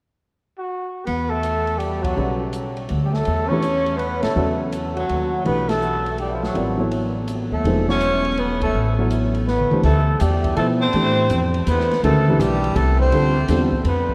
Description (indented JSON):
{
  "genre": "modal jazz",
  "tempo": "164 BPM",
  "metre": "3/4",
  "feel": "swing 65% on 8ths",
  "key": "E dorian, D dorian from 9.8 s",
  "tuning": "A4 = 436 Hz",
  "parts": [
    { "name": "growling trumpet", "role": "melody", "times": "0.6-14.1 s", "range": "F4 to C#5", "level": "-27 LUFS", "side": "equal", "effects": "tape echo" },
    { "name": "breathy tenor saxophone", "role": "second line", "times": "1.1-14.1 s", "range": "F3 to C#4", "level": "-28 LUFS", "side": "equal", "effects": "none" },
    { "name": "upright bass", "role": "bass", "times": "1.1-14.1 s", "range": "E1 to B2", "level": "-24 LUFS", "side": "equal", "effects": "none" },
    { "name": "open jazz drum kit", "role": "drums", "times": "1.1-14.1 s", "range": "crash cymbal, hi-hat, kick drum, ride cymbal, snare drum, toms", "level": "-34 LUFS", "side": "equal", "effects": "none" },
    { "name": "dark baby grand piano", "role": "accompaniment", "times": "2.2-13.7 s", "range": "C#3 to D5", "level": "-26 LUFS", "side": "equal", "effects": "none" }
  ],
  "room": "wet cathedral reverb, RT60 6.0 s",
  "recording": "dreamy mix soaked in reverb",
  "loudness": "-20 LUFS",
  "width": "mono",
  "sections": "0.0-1.1 A section; 1.1-9.8 B section; 9.8-14.1 C section",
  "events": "band accent 2.0, 4.2, 8.6; drum fill 9.5-9.8",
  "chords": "0.0 N.C.; 1.1 E9sus4; 9.8 D9sus4"
}